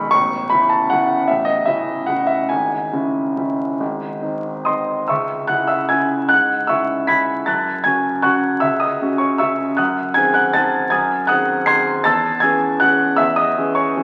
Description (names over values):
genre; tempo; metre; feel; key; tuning
classical, piano waltz; 133-168 BPM; 3/4; rubato; C# minor; A4 = 440 Hz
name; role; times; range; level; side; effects
warm concert grand piano; solo; 0.0-14.0 s; A0 to B#6; -18 LUFS; equal; none
room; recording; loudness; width
wet recital hall reverb, RT60 1.6 s; very old 78 rpm record, vinyl crackle; -18 LUFS; mono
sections
0.0-5.1 A section; 5.1-14.0 B section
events
none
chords
0.1 A; 2.5 C#m/G#; 3.8 G#; 5.1 C#m; 7.5 F#m; 9.8 G#7/F#; 12.1 C#m/E